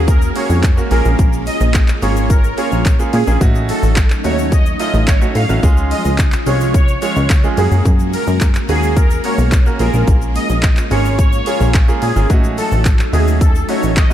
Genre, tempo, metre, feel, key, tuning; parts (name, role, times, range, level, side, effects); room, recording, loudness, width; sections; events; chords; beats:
dance-pop; 108 BPM; 4/4; straight; A4 = 440 Hz
bright concert grand piano; accompaniment; 0.0-14.1 s; Ab3 to Bb4; -22 LUFS; right 4 dB; sidechain pumping
string machine, full ensemble; sustained chords; 0.0-14.1 s; F3 to Gb4; -23 LUFS; left 1 dB; ensemble chorus, sidechain pumping
plucky analog bass; bass; 0.0-14.1 s; Ab1 to Bb2; -16 LUFS; equal; sidechain pumping
downlifter; sound effects; 0.0-1.2 s; barely audible
filtered supersaw swell; melody; 0.1-14.1 s; Ab4 to F5; -22 LUFS; right 1 dB; phaser
house drum kit; drums; 0.1-14.1 s; handclaps, hi-hat, kick drum, shaker; -14 LUFS; equal
tube shaker; percussion; 0.1-14.1 s; -36 LUFS; left 13 dB
digital ambience; dark, warm production; -12 LUFS; side -11 dB against mid
0.0-14.1 A section
0.0 Gbadd9; 0.9 Bbm7; 3.4 Gbm6/A; 5.6 Db; 7.6 Gbadd9; 9.8 Bbm7; 12.3 Gbm6/A
0.08 0.63 | 1.19 1.75 2.30 2.86 | 3.41 3.97 4.52 5.08 | 5.63 6.19 6.75 7.30 | 7.86 8.41 8.97 9.52 | 10.08 10.63 11.19 11.74 | 12.30 12.86 13.41 13.97